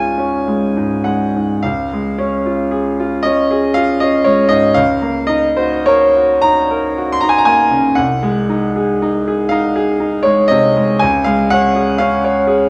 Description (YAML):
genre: classical, romantic nocturne for solo piano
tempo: 33-42 BPM (dotted quarters)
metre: 6/8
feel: rubato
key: Db major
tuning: A4 = 435 Hz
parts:
  - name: bright baby grand piano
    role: solo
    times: 0.0-12.7 s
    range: C2 to C6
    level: -14 LUFS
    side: equal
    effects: none
room: wet recital hall reverb, RT60 1.3 s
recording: worn, warbling old tape, cassette tape, warbly pitch drift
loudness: -15 LUFS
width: mono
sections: 0.0-1.6 A section; 1.6-12.7 B section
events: none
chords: 0.0 Db; 4.8 Ebm7/Db; 8.0 Ab7/C; 11.0 Db5